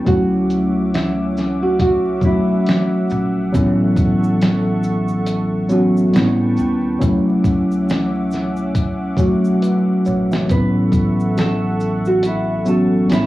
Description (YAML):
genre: lo-fi hip hop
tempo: 69 BPM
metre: 4/4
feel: swing 58% on 16ths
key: A major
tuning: A4 = 440 Hz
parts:
  - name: mellow tine electric piano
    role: accompaniment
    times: 0.0-13.3 s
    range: F#3 to E5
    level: -17 LUFS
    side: equal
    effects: medium stereo tremolo, cassette tape, low-pass filter
  - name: warm analog pad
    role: sustained chords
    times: 0.0-13.3 s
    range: C#4 to D6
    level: -28 LUFS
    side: equal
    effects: chorus, low-pass filter
  - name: upright bass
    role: bass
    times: 0.0-13.3 s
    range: A1 to D#2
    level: -24 LUFS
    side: equal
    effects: none
  - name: nylon-string guitar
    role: melody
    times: 0.1-2.6, 10.5-13.3 s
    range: E4 to B4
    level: -21 LUFS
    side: right 1 dB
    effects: low-pass filter, analog delay
  - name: dusty soul sampler-style drum kit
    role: drums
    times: 0.1-13.3 s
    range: hi-hat, kick drum, shaker, snare drum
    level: -19 LUFS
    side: equal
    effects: cassette tape
  - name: tube shaker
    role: percussion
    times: 3.5-13.3 s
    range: none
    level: -50 LUFS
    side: right 3 dB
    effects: none
room: light reverb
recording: home recording on cassette, vinyl crackle, small room ambience, faint mains hum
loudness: -15 LUFS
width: side -16 dB against mid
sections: 0.0-10.5 A section; 10.5-13.3 B section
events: drum fill 9.6-10.5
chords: 0.1 Dmaj9; 3.5 A6; 6.1 A9; 7.0 Dmaj9; 10.5 A6